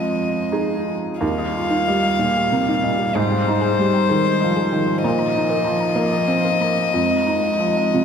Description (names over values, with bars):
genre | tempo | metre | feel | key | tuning
neoclassical piano and strings | 94 BPM | 3/4 | uneven beats, rubato | Eb major | A4 = 440 Hz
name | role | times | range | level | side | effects
warm violin | melody | 0.0-8.0 s | C5 to F5 | -21 LUFS | left 3 dB | none
rich cello | second line | 0.0-8.0 s | F3 to Ab3 | -27 LUFS | right 2 dB | none
felt-muted upright piano | accompaniment | 0.0-8.0 s | Eb2 to Ab4 | -20 LUFS | right 2 dB | none
glassy wavetable pluck | arpeggios | 1.2-8.0 s | Eb4 to Bb5 | -27 LUFS | left 2 dB | chorus
room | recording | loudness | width
wet cathedral reverb, RT60 4.1 s | recorded in a church or concert hall | -17 LUFS | side -7 dB against mid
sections
0.0-1.2 A section; 1.2-8.0 B section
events
none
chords
0.0 Fm7; 1.2 Ebadd9; 3.2 Abmaj7; 5.0 Bbsus4; 6.9 Fm7